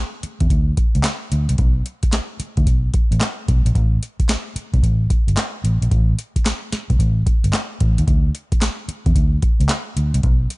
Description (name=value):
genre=R&B, new jack swing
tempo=111 BPM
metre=4/4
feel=swing 65% on 16ths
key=B minor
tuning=A4 = 441 Hz
part: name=vintage muted fingered electric bass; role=bass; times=0.2-10.5 s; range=G1 to E2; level=-18 LUFS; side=equal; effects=none
part: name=booming analog drum machine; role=drums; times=0.2-10.6 s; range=handclaps, hi-hat, kick drum, snare drum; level=-18 LUFS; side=equal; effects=none
room=little or no reverb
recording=nothing above 10.5 kHz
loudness=-16 LUFS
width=side -23 dB against mid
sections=0.0-10.6 A section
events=none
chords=none